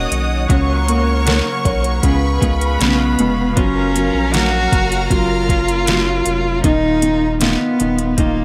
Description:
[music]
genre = pop ballad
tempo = 78 BPM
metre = 4/4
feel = straight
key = F# major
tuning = A4 = 439 Hz
[part]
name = rich studio violin section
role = second line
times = 0.0-6.6 s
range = A#4 to D#6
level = -28 LUFS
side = equal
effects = none
[part]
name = felt-muted upright piano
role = accompaniment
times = 0.0-8.4 s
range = C#3 to C#5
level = -24 LUFS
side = equal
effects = none
[part]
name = sweeping resonant pad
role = sustained chords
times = 0.0-6.6 s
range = A#4 to E#6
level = -28 LUFS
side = equal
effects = chorus
[part]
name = direct-recorded clean electric guitar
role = arpeggios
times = 0.0-8.4 s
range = C#3 to G#4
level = -28 LUFS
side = equal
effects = tremolo
[part]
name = saturated sub bass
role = bass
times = 0.0-8.4 s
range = D#1 to C#2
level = -22 LUFS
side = equal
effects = none
[part]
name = smooth R&B drum kit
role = drums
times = 0.1-8.4 s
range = hi-hat, kick drum, snare drum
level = -20 LUFS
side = equal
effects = overdrive
[part]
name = rich cello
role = melody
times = 2.8-8.4 s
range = A#3 to F#4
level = -20 LUFS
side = equal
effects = none
[sound]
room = little or no reverb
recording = none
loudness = -16 LUFS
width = mono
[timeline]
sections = 0.0-8.4 A section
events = none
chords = 0.5 F#/C#; 2.0 C#7; 3.6 F#maj7; 6.6 D#sus2

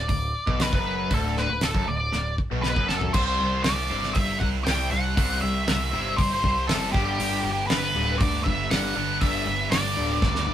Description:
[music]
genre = classic rock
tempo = 118 BPM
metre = 4/4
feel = straight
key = unclear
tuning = A4 = 440 Hz
[part]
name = octave-fuzz lead guitar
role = melody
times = 0.0-10.5 s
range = G4 to G5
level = -27 LUFS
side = left 1 dB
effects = wah, distortion
[part]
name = crunchy overdriven guitar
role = riff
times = 0.0-10.5 s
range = D2 to C4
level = -30 LUFS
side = left 3 dB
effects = none
[part]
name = tight distorted guitar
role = riff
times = 0.0-10.5 s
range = D2 to C5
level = -32 LUFS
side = right 6 dB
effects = distortion
[part]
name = growling picked electric bass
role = bass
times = 0.0-10.5 s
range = D1 to D2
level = -30 LUFS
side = equal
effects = overdrive
[part]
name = damped 70s drum kit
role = drums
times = 0.1-10.5 s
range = crash cymbal, hi-hat, kick drum, snare drum, toms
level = -26 LUFS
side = equal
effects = none
[sound]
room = moderate small room reverb, RT60 0.5 s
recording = band playing live in one room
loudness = -22 LUFS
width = side -10 dB against mid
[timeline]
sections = 0.0-3.1 A section; 3.1-10.5 B section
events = drum fill 2.1-3.1, 10.2-10.5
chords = 0.0 D; 3.1 C; 6.9 G

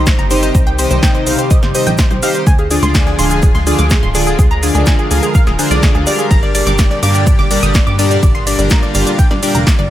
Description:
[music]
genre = progressive house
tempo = 125 BPM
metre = 4/4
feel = straight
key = C minor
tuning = A4 = 440 Hz
[part]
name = lush unison pad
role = sustained chords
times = 0.0-9.9 s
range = Bb2 to Bb4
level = -20 LUFS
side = equal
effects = chorus, phaser, sidechain pumping
[part]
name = plucky analog bass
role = bass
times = 0.0-9.9 s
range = D1 to G2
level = -16 LUFS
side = equal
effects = sidechain pumping
[part]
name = sub drop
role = sound effects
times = 0.0-0.5 s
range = none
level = barely audible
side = none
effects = none
[part]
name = wide unison pluck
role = arpeggios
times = 0.1-9.9 s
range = Ab4 to Eb6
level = -20 LUFS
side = equal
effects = sidechain pumping, tape echo
[part]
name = big-room dance drum kit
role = drums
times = 0.1-9.9 s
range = hi-hat, ride cymbal, shaker, snare drum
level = -20 LUFS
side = equal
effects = none
[part]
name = electronic kick drum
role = drums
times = 0.1-9.8 s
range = none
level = -12 LUFS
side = equal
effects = none
[part]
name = tight funk drum kit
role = drums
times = 0.1-9.8 s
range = hi-hat, shaker, snare drum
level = -29 LUFS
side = left 1 dB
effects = none
[part]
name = chorused polysynth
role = stabs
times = 0.3-9.5 s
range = C3 to F5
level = -18 LUFS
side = left 2 dB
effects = sidechain pumping, tape echo
[sound]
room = little or no reverb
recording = none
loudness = -10 LUFS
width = side -13 dB against mid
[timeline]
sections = 0.0-9.9 A section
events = impact 0.0-0.5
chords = 0.0 Cm; 2.5 Ddim; 6.3 Gm

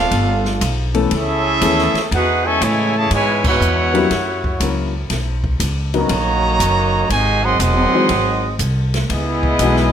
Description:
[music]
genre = jazz, big band swing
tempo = 120 BPM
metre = 4/4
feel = swing 67% on 8ths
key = C# minor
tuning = A4 = 439 Hz
[part]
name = warm trumpet section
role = melody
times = 0.0-9.9 s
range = B3 to C#6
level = -18 LUFS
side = right 1 dB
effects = none
[part]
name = bright trombone section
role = second line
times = 0.0-9.9 s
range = B2 to F#4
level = -23 LUFS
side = right 3 dB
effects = none
[part]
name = upright bass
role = bass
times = 0.0-9.9 s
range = D1 to A2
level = -19 LUFS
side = equal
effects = none
[part]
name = open jazz drum kit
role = drums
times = 0.1-9.9 s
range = crash cymbal, hi-hat, kick drum, ride cymbal, snare drum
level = -24 LUFS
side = left 1 dB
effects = none
[part]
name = warm grand piano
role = accompaniment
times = 0.9-9.9 s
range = E3 to A#4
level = -20 LUFS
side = left 6 dB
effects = none
[sound]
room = moderate large studio reverb, RT60 1.4 s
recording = none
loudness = -14 LUFS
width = side -9 dB against mid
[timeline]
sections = 0.0-9.9 A section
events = band accent 3.4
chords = 0.1 G9; 1.1 Amaj7; 3.1 C#m7; 4.1 F#7; 5.1 Bmaj9; 7.1 G#7b13; 9.1 C#m11

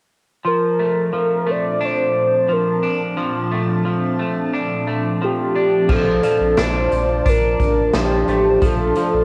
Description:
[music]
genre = dream pop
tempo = 88 BPM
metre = 4/4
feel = straight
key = Bb major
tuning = A4 = 440 Hz
[part]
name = ethereal airy pad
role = sustained chords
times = 1.2-9.2 s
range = Bb2 to A5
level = -27 LUFS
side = equal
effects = ensemble chorus, built-in reverb, cassette tape
[part]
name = electric guitar at the edge of break-up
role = arpeggios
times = 0.4-9.2 s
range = F3 to D4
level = -24 LUFS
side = equal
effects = subtle chorus, cassette tape, analog delay
[part]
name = warm velvety synth lead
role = melody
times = 0.5-9.2 s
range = G4 to D5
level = -20 LUFS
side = equal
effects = chorus, cassette tape
[part]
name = sub bass with octave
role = bass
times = 5.9-9.2 s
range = A1 to Bb1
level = -26 LUFS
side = equal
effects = none
[part]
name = raw garage drum kit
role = drums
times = 5.9-9.1 s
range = crash cymbal, hi-hat, kick drum, snare drum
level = -24 LUFS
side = equal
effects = cassette tape
[part]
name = soft synth bell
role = texture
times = 6.2-9.2 s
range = G4 to D5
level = -33 LUFS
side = equal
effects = none
[sound]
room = light reverb, studio ambience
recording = home recording on cassette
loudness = -18 LUFS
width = mono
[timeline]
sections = 0.4-5.9 A section; 5.9-9.2 B section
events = none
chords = 0.4 Bbmaj7; 5.9 C9sus4

